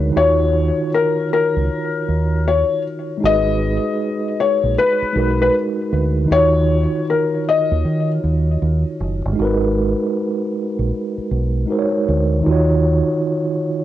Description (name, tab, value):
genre	hip hop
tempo	78 BPM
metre	4/4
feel	swing 65% on 16ths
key	G# dorian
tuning	A4 = 442 Hz
part	mellow tine electric piano	accompaniment	0.0-13.8 s	D#3 to C#5	-20 LUFS	right 2 dB	medium stereo tremolo, cassette tape
part	deep dub fingered electric bass	bass	0.0-13.0 s	F#1 to D#3	-18 LUFS	right 1 dB	none
part	felt-muted upright piano	melody	0.2-8.1 s	A#4 to D#5	-18 LUFS	left 4 dB	cassette tape, tape echo
room	light reverb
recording	home recording on cassette, nothing above 10.9 kHz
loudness	-16 LUFS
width	side -13 dB against mid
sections	0.0-13.8 A section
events	none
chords	0.2 D#m9; 3.2 G#m9; 6.3 D#m9; 9.4 G#m9; 12.5 D#m9